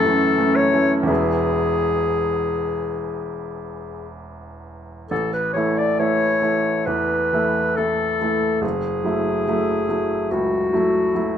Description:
classical, romantic duo for clarinet and grand piano; 57-72 BPM; 4/4; rubato; A major; A4 = 439 Hz
warm clarinet; melody; 0.0-11.4 s; F#4 to D5; -21 LUFS; left 4 dB
clear baby grand piano; accompaniment; 0.0-11.4 s; E1 to E4; -22 LUFS; right 2 dB
moderate large studio reverb, RT60 0.8 s; minimal, uncompressed stereo recording; -18 LUFS; side -9 dB against mid
0.0-5.1 A section; 5.1-11.4 B section
0.0 F#m7; 1.1 E; 5.1 A; 8.6 F#m7

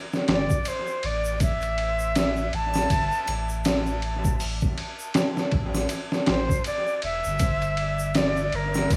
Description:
trip hop; 80 BPM; 4/4; swing 59% on 16ths; A4 = 441 Hz
trip hop sampler-style drum kit; drums; 0.1-9.0 s; hi-hat, kick drum, ride cymbal, snare drum; -28 LUFS; equal; dub echo
egg shaker and triangle; percussion; 0.1-9.0 s; -43 LUFS; equal
bright reedy silver concert flute; melody; 0.3-9.0 s; Bb4 to A5; -30 LUFS; equal; dub echo
warm sub bass; bass; 0.3-9.0 s; E1 to A1; -32 LUFS; equal
light reverb; echo-heavy mix, small room ambience; -25 LUFS; mono
0.0-9.0 A section
0.0 A5

